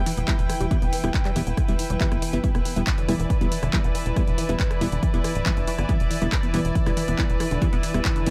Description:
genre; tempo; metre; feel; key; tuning
driving peak-time techno; 139 BPM; 4/4; straight; E minor; A4 = 439 Hz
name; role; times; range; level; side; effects
tight sequencer bass; bass; 0.0-8.3 s; D1 to G1; -29 LUFS; equal; sidechain pumping
swarming drone; drone; 0.1-8.3 s; E3; -37 LUFS; equal; none
dark studio string section; texture; 0.0-8.3 s; E4 to G5; -32 LUFS; equal; sidechain pumping
tight sequenced synth; riff; 0.1-8.3 s; D3 to B3; -34 LUFS; equal; chorus, phaser, sidechain pumping, tape echo
techno drum kit; drums; 0.1-8.3 s; handclaps, hi-hat, rim click; -34 LUFS; equal; sidechain pumping on hats, sidechain pumping on cymbals
wavetable chord stab; stabs; 0.3-8.3 s; G3 to E4; -31 LUFS; equal; sidechain pumping, dub echo
electronic kick drum; drums; 0.3-8.1 s; none; -26 LUFS; equal; none
room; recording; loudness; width
little or no reverb; none; -23 LUFS; mono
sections
0.0-8.3 A section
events
none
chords
0.0 Em

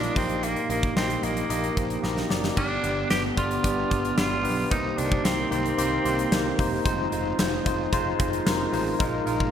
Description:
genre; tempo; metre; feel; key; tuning
1980s-style pop; 112 BPM; 4/4; straight; unclear; A4 = 439 Hz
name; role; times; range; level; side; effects
raspy tenor saxophone; melody; 0.0-6.5 s; Bb3 to G4; -29 LUFS; right 2 dB; none
tine electric piano; accompaniment; 0.0-9.5 s; G2 to Eb5; -27 LUFS; left 1 dB; medium stereo tremolo
fuzz picked electric bass; bass; 0.0-9.5 s; E1 to C2; -32 LUFS; equal; overdrive
huge arena drum kit; drums; 0.0-9.5 s; crash cymbal, hi-hat, kick drum, snare drum; -28 LUFS; equal; gated reverb
brassy analog pad; sustained chords; 2.6-9.5 s; D3 to G4; -34 LUFS; right 1 dB; none
room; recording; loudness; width
wet lush hall reverb, RT60 2.0 s, small room ambience; bright 1980s-style digital production; -22 LUFS; side -9 dB against mid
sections
0.0-2.6 A section; 2.6-9.5 B section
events
drum fill 2.0-2.6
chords
0.2 Eb/Bb; 2.6 G; 4.7 Cm7; 6.9 Fm7; 9.0 Bb7sus4

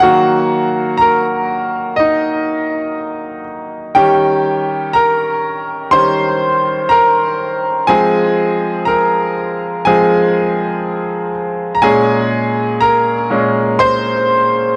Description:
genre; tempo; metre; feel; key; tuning
pop; 61 BPM; 4/4; straight; unclear; A4 = 440 Hz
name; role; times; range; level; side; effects
bright grand piano; solo; 0.0-14.8 s; Bb2 to C6; -14 LUFS; equal; tape echo
room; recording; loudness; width
moderate booth ambience, RT60 0.2 s; home recording on cassette; -14 LUFS; mono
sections
0.0-4.0 A section; 4.0-14.8 A section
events
grand piano solo 0.0-4.0, 4.0-14.8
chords
0.0 Ebm; 4.0 Eb7; 7.9 Fm; 11.8 Bbm7

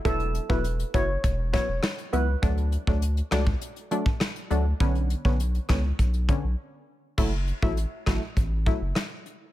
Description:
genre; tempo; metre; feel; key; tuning
dancehall; 101 BPM; 4/4; straight; F# minor; A4 = 437 Hz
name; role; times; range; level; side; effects
steel pan; melody; 0.1-2.2 s; A4 to C#5; -30 LUFS; right 1 dB; none
punchy chord stab; accompaniment; 0.1-8.8 s; D3 to E4; -31 LUFS; left 1 dB; chorus
saturated sub bass; bass; 0.1-8.9 s; E1 to D2; -26 LUFS; equal; none
soft brush drum kit; drums; 0.1-9.4 s; crash cymbal, hi-hat, kick drum, rim click, snare drum; -26 LUFS; equal; none
room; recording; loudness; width
small room ambience; none; -23 LUFS; side -14 dB against mid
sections
0.0-7.2 A section; 7.2-9.5 B section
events
break 6.6-7.2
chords
0.1 Esus2; 2.4 D; 4.8 Bmadd9; 7.2 F#m7

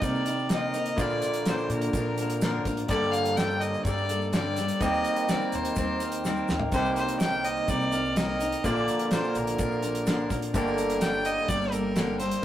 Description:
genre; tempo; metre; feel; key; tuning
folk rock and heartland rock; 125 BPM; 4/4; straight; unclear; A4 = 440 Hz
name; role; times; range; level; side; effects
clear fiddle; melody; 0.0-12.4 s; Bb4 to G5; -30 LUFS; equal; analog delay
picked steel-string acoustic guitar; accompaniment; 0.0-12.4 s; G2 to Bb4; -32 LUFS; left 3 dB; none
electric guitar through a small old amp; riff; 0.0-12.4 s; G2 to A4; -30 LUFS; right 1 dB; none
upright bass; bass; 0.0-12.4 s; G1 to C3; -34 LUFS; equal; none
damped 70s drum kit; drums; 0.0-12.4 s; hi-hat, kick drum, snare drum, toms; -30 LUFS; equal; none
egg shaker; percussion; 0.0-12.3 s; none; -47 LUFS; right 5 dB; none
room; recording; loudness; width
moderate studio reverb, RT60 0.5 s; rough rehearsal-room recording, tube saturation; -24 LUFS; side -12 dB against mid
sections
0.0-12.4 A section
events
drum fill 6.3-6.7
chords
0.0 Cm7; 1.0 Bb; 2.9 Gmadd9; 4.8 Eb6; 6.7 Cm7; 8.6 Bb; 10.5 Gmadd9

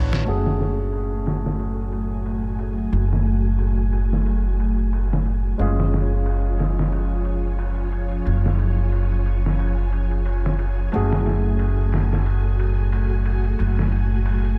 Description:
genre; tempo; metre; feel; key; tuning
trip hop; 90 BPM; 4/4; swing 57% on 16ths; F# harmonic minor; A4 = 441 Hz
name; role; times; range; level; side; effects
warm upright piano; accompaniment; 0.0-14.6 s; G#3 to C#5; -33 LUFS; equal; harmonic tremolo, low-pass filter, tape echo
upright bass; bass; 0.0-14.6 s; F#1 to A1; -23 LUFS; equal; none
trip hop sampler-style drum kit; drums; 0.1-14.6 s; ride cymbal, snare drum; -32 LUFS; equal; low-pass filter on snare, low-pass filter on cymbals, low-pass filter on kick
string machine, cellos; sustained chords; 0.2-14.6 s; A3 to G#5; -32 LUFS; equal; ensemble chorus
room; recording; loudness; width
studio ambience; none; -22 LUFS; mono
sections
0.3-14.6 A section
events
filter sweep on string machine 0.3-14.6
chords
0.3 F#madd9; 5.6 C#/F#; 10.9 F#madd9

